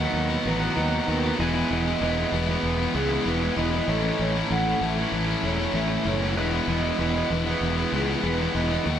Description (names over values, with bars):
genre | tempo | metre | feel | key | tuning
post-rock | 96 BPM | 4/4 | straight | E major | A4 = 439 Hz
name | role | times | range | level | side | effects
pedal steel guitar | sustained chords | 0.0-8.8 s | D#4 to G#5 | -40 LUFS | left 1 dB | none
vibraphone with hard mallets | arpeggios | 0.0-9.0 s | G#4 to F#5 | -31 LUFS | right 4 dB | none
distorted electric guitar | riff | 0.0-9.0 s | A2 to F#4 | -27 LUFS | left 5 dB | overdrive
distorted electric guitar | riff | 0.0-8.8 s | A2 to F#4 | -28 LUFS | right 3 dB | distortion
fuzz fingered electric bass | bass | 0.0-9.0 s | E1 to D#2 | -27 LUFS | equal | overdrive
room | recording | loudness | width
wet stone room reverb, RT60 1.4 s | band playing live in one room | -22 LUFS | side -9 dB against mid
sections
0.0-9.0 A section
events
none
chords
0.0 Badd9/D#; 1.4 Emaj7; 3.9 Amaj7; 6.4 Emaj7